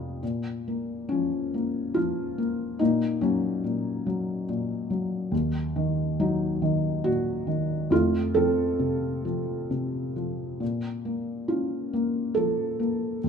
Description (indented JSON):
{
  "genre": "classical, lyrical solo piano",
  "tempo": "69 BPM",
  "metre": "3/4",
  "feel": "rubato",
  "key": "Bb harmonic minor",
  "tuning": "A4 = 441 Hz",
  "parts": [
    { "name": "felt-muted upright piano", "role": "solo", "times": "0.0-13.3 s", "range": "F1 to A4", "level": "-25 LUFS", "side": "left 1 dB", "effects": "none" }
  ],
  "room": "light reverb",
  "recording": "close, detailed microphones",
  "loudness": "-25 LUFS",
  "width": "side -6 dB against mid",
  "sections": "0.2-13.3 A section",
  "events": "none",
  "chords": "0.2 Bbm; 2.8 Gb/Bb; 5.3 Ebm; 7.9 F; 10.6 Bbm"
}